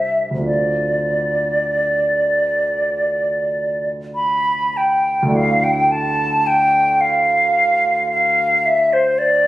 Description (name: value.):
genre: classical, impressionist duo for flute and grand piano.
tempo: 47-56 BPM.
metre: 4/4.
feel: rubato.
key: D minor.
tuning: A4 = 439 Hz.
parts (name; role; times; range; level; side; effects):
hollow concert flute; melody; 0.0-9.5 s; C5 to B5; -15 LUFS; equal; none.
warm grand piano; accompaniment; 0.0-9.5 s; C2 to D5; -25 LUFS; right 1 dB; none.
room: moderate recital hall reverb, RT60 1.4 s.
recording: recorded on a phone in the room, studio reverb.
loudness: -15 LUFS.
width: side -16 dB against mid.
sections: 0.0-5.4 A section; 5.4-9.5 A section.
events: none.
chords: 0.5 Dm7; 5.4 Dmadd9.